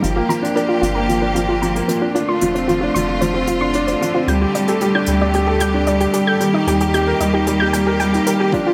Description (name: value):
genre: piano and strings electronica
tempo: 113 BPM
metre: 4/4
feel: straight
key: G minor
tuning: A4 = 440 Hz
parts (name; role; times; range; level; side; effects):
- bright studio string section; sustained chords; 0.0-8.7 s; D3 to G4; -25 LUFS; equal; sidechain pumping
- soft round pluck; arpeggios; 0.0-8.7 s; F4 to G6; -25 LUFS; equal; chorus, sidechain pumping, delay
- felt-muted upright piano; riff; 0.0-8.7 s; F3 to Bb4; -20 LUFS; equal; delay
- round analog bass; bass; 0.0-8.7 s; F1 to Eb2; -26 LUFS; equal; sidechain pumping
- hi-hat; drums; 0.0-8.6 s; none; -32 LUFS; equal; high-pass filter on hats, high-pass filter on room
- electronic kick drum; drums; 8.5-8.6 s; none; -27 LUFS; equal; overdrive
room: moderate scoring stage reverb, RT60 1.9 s, small room ambience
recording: high-pass filter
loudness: -17 LUFS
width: mono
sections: 0.0-8.7 A section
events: build-up 0.0-8.7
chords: 0.0 Gm7; 2.2 F6; 4.3 Dsus4; 6.4 Eb